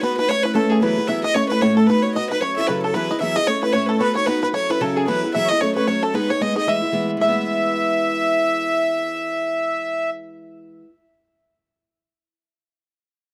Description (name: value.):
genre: celtic folk.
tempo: 226 BPM.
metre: 4/4.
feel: swing 58% on 8ths.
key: E major.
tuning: A4 = 439 Hz.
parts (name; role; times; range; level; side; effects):
clear fiddle; melody; 0.0-10.1 s; G#4 to E5; -25 LUFS; equal; none.
accordion; second line; 0.0-10.1 s; G#4 to E5; -27 LUFS; equal; none.
bluegrass banjo; second line; 0.0-10.8 s; G#4 to E5; -28 LUFS; equal; none.
picked steel-string acoustic guitar; accompaniment; 0.0-10.9 s; F#2 to B4; -24 LUFS; equal; none.
room: small room ambience.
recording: dry, close 1970s-style studio recording.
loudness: -20 LUFS.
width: mono.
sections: 0.0-7.2 A section; 7.2-9.3 B section.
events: none.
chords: 0.3 Aadd9; 0.8 Eadd9; 1.4 A; 1.9 B; 2.4 F#m7; 2.9 Eadd9; 3.5 A; 4.0 B; 4.5 F#m7; 5.1 Eadd9; 5.6 F#m; 6.1 G#m; 6.7 E.